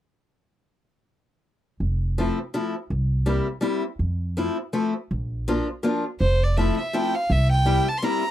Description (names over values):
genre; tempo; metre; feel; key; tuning
musette; 164 BPM; 3/4; straight; F major; A4 = 440 Hz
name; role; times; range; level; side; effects
upright bass; bass; 1.8-7.8 s; F1 to F2; -22 LUFS; right 1 dB; none
picked steel-string acoustic guitar; accompaniment; 2.2-8.2 s; F3 to F4; -24 LUFS; left 2 dB; none
bright violin; melody; 6.2-8.3 s; C5 to C6; -24 LUFS; right 1 dB; none
room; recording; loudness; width
little or no reverb; dry, close 1970s-style studio recording; -21 LUFS; side -12 dB against mid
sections
1.8-6.2 A section; 6.2-8.3 B section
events
none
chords
1.8 Fmaj7; 2.9 C7; 4.0 Fmaj7; 5.1 Bb; 6.2 Fmaj7; 7.3 C7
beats
| 1.81 2.18 2.55 | 2.91 3.28 3.64 | 4.01 4.37 4.74 | 5.10 5.47 5.84 | 6.21 6.58 6.94 | 7.31 7.67 8.04